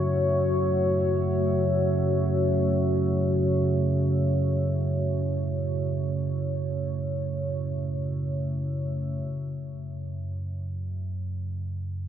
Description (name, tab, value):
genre	dark ambient drone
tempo	free time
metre	none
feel	none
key	F# minor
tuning	A4 = 441 Hz
part	dark analog pad	sustained chords	0.0-9.3 s	A3 to E5	-28 LUFS	left 1 dB	chorus, phaser
part	deep rumbling drone	drone	0.0-12.1 s	F#2 to C#3	-26 LUFS	right 1 dB	built-in reverb
room	wet cathedral reverb, RT60 6.4 s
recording	in a vast, echoing space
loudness	-24 LUFS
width	side -9 dB against mid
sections	0.0-9.3 A section; 9.3-12.1 B section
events	none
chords	0.0 F#m7; 9.3 F#5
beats	free time